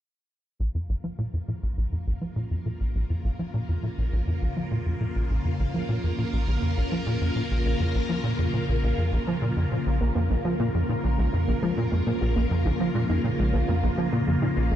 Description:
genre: ambient, sequencer-driven space music.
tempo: 102 BPM.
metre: 4/4.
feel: straight.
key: Bb minor.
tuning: A4 = 441 Hz.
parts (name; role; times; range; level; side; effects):
phased string machine; sustained chords; 1.7-14.8 s; Db3 to Bb4; -29 LUFS; equal; ensemble chorus, phaser.
tight sequencer bass; riff; 0.6-14.8 s; Bb1 to F3; -25 LUFS; equal; ensemble chorus, ping-pong delay.
soft round pluck; arpeggios; 10.0-14.8 s; F3 to F4; -31 LUFS; right 1 dB; chorus, auto-pan, ping-pong delay.
room: wet huge ambient reverb, RT60 8.3 s.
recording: dark, warm production.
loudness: -24 LUFS.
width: side -11 dB against mid.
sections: 0.6-10.0 A section; 10.0-14.8 B section.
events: fade-in on string machine 0.6-10.0; filter sweep on analog synth bass 0.6-10.0.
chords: 0.6 Bbm.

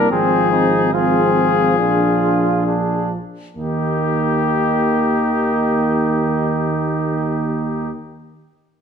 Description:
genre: classical, brass quintet.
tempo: 65-73 BPM.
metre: 4/4.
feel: rubato.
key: Eb major.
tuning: A4 = 440 Hz.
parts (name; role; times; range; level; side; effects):
clear trumpet; melody; 0.0-7.9 s; G4 to Ab4; -20 LUFS; left 9 dB; none.
mellow trumpet; second line; 0.0-7.9 s; C4 to F4; -23 LUFS; right 8 dB; none.
clear trombone; accompaniment; 0.0-7.9 s; Eb3 to F3; -24 LUFS; right 4 dB; none.
warm French horn; accompaniment; 0.0-7.9 s; Bb3 to D4; -23 LUFS; left 3 dB; none.
mellow tuba; bass; 0.0-7.9 s; Ab1 to Eb2; -23 LUFS; right 4 dB; none.
room: wet recital hall reverb, RT60 1.4 s.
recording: minimal, uncompressed stereo recording.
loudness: -15 LUFS.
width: side -7 dB against mid.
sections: 0.0-3.6 A section; 3.6-7.2 B section.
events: slowing down 0.0-3.6.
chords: 0.1 Fm/Ab; 1.8 Bb7; 3.6 Eb.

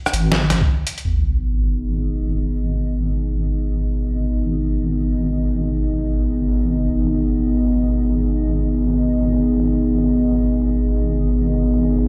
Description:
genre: half-time drum and bass.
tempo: free time.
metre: none.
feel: none.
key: G# minor.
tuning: A4 = 440 Hz.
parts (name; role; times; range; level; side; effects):
deep soft wobble bass; bass; 0.1-12.1 s; G#1; -22 LUFS; equal; chorus, tube saturation.
boom bap sampler-style drum kit; drums; 0.1-1.0 s; hi-hat, rim click, shaker, snare drum; -23 LUFS; equal; low-pass filter on snare, low-pass filter on perc, low-pass filter on hats.
electronic kick drum; drums; 0.6-0.7 s; none; -21 LUFS; equal; none.
dark analog pad; sustained chords; 1.1-12.1 s; B3 to D#5; -23 LUFS; equal; subtle chorus, sidechain pumping.
sub drop; sound effects; 1.1-2.5 s; none; -25 LUFS; equal; none.
room: moderate echo chamber reverb, RT60 1.4 s.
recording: played on a big sound system in a bare room, large studio reverb.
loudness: -20 LUFS.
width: mono.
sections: 0.0-1.1 A section; 1.1-12.1 B section.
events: break 0.7-1.1; impact 1.1-2.5.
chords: 0.0 G#5; 1.1 G#m.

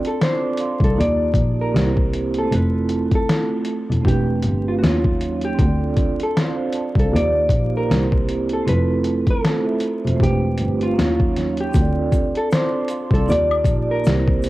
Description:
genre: lo-fi hip hop.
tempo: 78 BPM.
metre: 4/4.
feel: swing 59% on 16ths.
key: unclear.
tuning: A4 = 440 Hz.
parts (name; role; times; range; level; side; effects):
hollow-body jazz guitar; melody; 0.0-14.5 s; F4 to D5; -24 LUFS; left 1 dB; low-pass filter, cassette tape.
vibraphone with soft mallets; accompaniment; 0.0-14.5 s; Gb3 to D6; -22 LUFS; right 3 dB; cassette tape, low-pass filter.
dusty soul sampler-style drum kit; drums; 0.0-14.5 s; hi-hat, kick drum, snare drum; -20 LUFS; equal; overdrive, cassette tape.
warm double bass; bass; 0.8-14.5 s; E1 to Eb2; -21 LUFS; equal; none.
egg shaker and woodblock; percussion; 11.7-14.5 s; none; -34 LUFS; left 8 dB; none.
room: light reverb, studio reverb.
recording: home recording on cassette, vinyl crackle.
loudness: -17 LUFS.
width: side -17 dB against mid.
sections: 0.0-14.5 A section.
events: none.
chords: 0.0 Dm7; 1.0 Ebmaj9; 1.7 C7; 2.5 Fmaj7; 4.0 Am11/E; 4.8 Ebm7; 5.6 Dm7; 7.1 Ebmaj9; 7.9 C7; 8.7 Fmaj7; 10.2 Am11/E; 11.0 Ebm7; 11.7 Dm7; 13.3 Ebmaj9.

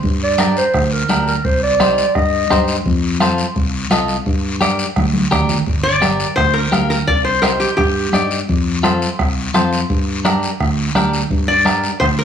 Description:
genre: latin, cumbia.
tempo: 170 BPM.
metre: 4/4.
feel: straight.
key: G minor.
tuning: A4 = 439 Hz.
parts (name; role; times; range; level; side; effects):
fingered electric bass; bass; 0.0-12.2 s; G1 to G2; -20 LUFS; equal; none.
bombo; percussion; 0.0-12.2 s; none; -21 LUFS; right 2 dB; none.
congas; percussion; 0.0-12.2 s; none; -22 LUFS; equal; none.
guiro; percussion; 0.0-12.2 s; none; -26 LUFS; left 4 dB; none.
dark clarinet; second line; 0.2-2.7 s; Bb4 to Eb5; -17 LUFS; right 2 dB; none.
clean electric guitar; accompaniment; 0.4-11.9 s; D4 to F5; -20 LUFS; left 2 dB; none.
metal-body resonator slide guitar; melody; 5.8-8.3, 11.5-12.2 s; G4 to D5; -16 LUFS; left 1 dB; none.
room: light reverb.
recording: small room ambience.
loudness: -14 LUFS.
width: side -8 dB against mid.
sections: 0.0-5.7 A section; 5.7-12.2 B section.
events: clarinet solo 0.0-5.7; drum fill 5.0-5.7.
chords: 0.0 Gm; 1.4 Cm; 2.9 F; 4.3 Gm; 7.1 Cm; 8.5 F; 9.9 Gm.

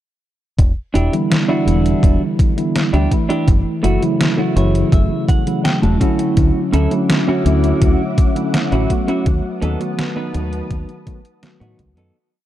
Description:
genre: vaporwave.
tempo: 83 BPM.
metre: 4/4.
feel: straight.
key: E dorian.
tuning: A4 = 436 Hz.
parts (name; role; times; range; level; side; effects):
deep dub fingered electric bass; bass; 0.6-12.1 s; E1 to A2; -17 LUFS; equal; none.
detuned 8-bit digital drum machine; drums; 0.6-12.1 s; hi-hat, snare drum; -21 LUFS; equal; overdrive.
electronic kick drum; drums; 0.6-11.9 s; none; -15 LUFS; equal; overdrive.
clean electric guitar; riff; 0.9-12.2 s; A3 to A5; -22 LUFS; right 1 dB; lush chorus, vintage 12-bit sampler grit, analog delay.
mellow tine electric piano; accompaniment; 1.1-12.1 s; C#3 to F#4; -19 LUFS; equal; medium stereo tremolo, wide subtle chorus, vintage 12-bit sampler grit, analog delay.
soft string machine; sustained chords; 6.6-12.1 s; C#4 to D#6; -27 LUFS; left 1 dB; ensemble chorus.
room: digital ambience.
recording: dark, warm production.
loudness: -14 LUFS.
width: side -13 dB against mid.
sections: 0.6-12.2 groove.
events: clean electric guitar fill 4.2-6.4; fade-out 8.3-12.2.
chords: 0.6 Em7; 3.5 F#m7; 6.0 Dmaj9; 9.3 B7/D#.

